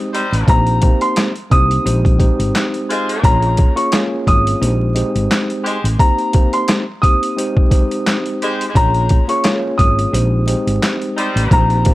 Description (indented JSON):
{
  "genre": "hip hop, boom-bap hip-hop",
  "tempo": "87 BPM",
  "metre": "4/4",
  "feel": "swing 55% on 16ths",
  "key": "unclear",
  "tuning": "A4 = 437 Hz",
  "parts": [
    { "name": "mellow tine electric piano", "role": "accompaniment", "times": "0.0-11.9 s", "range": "Ab3 to Db5", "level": "-20 LUFS", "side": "equal", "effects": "medium stereo tremolo, cassette tape, high-pass filter, low-pass filter" },
    { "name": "warm horn section", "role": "stabs", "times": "0.1-11.6 s", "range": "G3 to C5", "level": "-23 LUFS", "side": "equal", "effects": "high-pass filter, low-pass filter, tape echo" },
    { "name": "boom bap sampler-style drum kit", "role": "drums", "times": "0.1-11.9 s", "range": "handclaps, hi-hat, kick drum, snare drum", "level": "-15 LUFS", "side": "equal", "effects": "overdrive" },
    { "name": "woody fretless electric bass", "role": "bass", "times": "0.3-11.9 s", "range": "Ab1 to C2", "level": "-16 LUFS", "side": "equal", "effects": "none" },
    { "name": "bright upright piano", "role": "melody", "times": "0.5-11.9 s", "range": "Bb5 to Eb6", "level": "-20 LUFS", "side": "equal", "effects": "high-pass filter, low-pass filter" }
  ],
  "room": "little or no reverb",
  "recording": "dry, gritty hardware recording, vinyl crackle",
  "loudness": "-13 LUFS",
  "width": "side -18 dB against mid",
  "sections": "0.0-11.9 A section",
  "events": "none",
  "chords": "0.5 Eb6/Bb; 1.9 Abmaj7; 3.2 Bbm7; 4.6 Abmaj7; 6.0 Eb6/Bb; 7.4 Abmaj7; 8.8 Bbm7; 10.1 Abmaj7",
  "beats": "| 0.48 1.17 1.86 2.54 | 3.23 3.92 4.61 5.30 | 5.99 6.68 7.37 8.06 | 8.75 9.44 10.13 10.82 | 11.51"
}